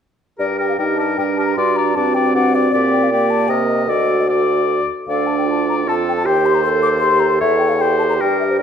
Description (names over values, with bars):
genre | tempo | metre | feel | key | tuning
quick classical-period movement for wind quintet | 154 BPM | 3/4 | rubato | G minor | A4 = 440 Hz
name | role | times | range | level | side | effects
mellow hollow concert flute | melody | 0.4-8.6 s | C5 to D6 | -21 LUFS | left 7 dB | none
clear oboe | second line | 0.4-8.6 s | A4 to Eb5 | -21 LUFS | left 4 dB | none
clear clarinet | accompaniment | 0.4-8.6 s | F4 to Bb4 | -24 LUFS | right 9 dB | none
mellow French horn | accompaniment | 0.4-8.6 s | Bb3 to A4 | -20 LUFS | right 1 dB | none
clear bassoon | bass | 0.4-8.6 s | D2 to C3 | -21 LUFS | right 3 dB | none
room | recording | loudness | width
wet recital hall reverb, RT60 1.7 s | none | -14 LUFS | side -8 dB against mid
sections
0.4-8.6 A section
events
none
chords
0.4 Gm; 1.6 D7/G; 2.7 Gm/Bb; 3.5 Cm7; 3.9 D; 5.1 Dm; 6.3 Cm/Eb; 7.4 Edim7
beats
| 0.39 0.79 1.18 | 1.57 1.96 2.35 | 2.73 3.11 3.49 | 3.88 4.28 4.68 | 5.08 5.48 5.87 | 6.26 6.64 7.03 | 7.42 7.80 8.20 | 8.60